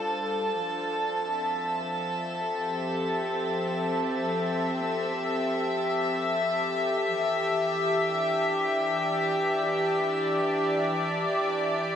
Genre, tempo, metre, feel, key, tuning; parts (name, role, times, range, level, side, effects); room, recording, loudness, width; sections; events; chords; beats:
ambient; free time; A4 = 440 Hz
dark chamber string section; sustained chords; 0.0-12.0 s; E3 to E5; -25 LUFS; left 1 dB
drifting glass-harmonics texture; texture; 0.0-12.0 s; A5; -35 LUFS; right 5 dB; chorus, built-in reverb
wet shimmer reverb, RT60 7.4 s; -25 LUFS; side -8 dB against mid
0.0-12.0 A section
fade-out on synth texture 0.0-12.0
0.0 G9sus4; 0.6 Fmaj7; 7.2 Em7
free time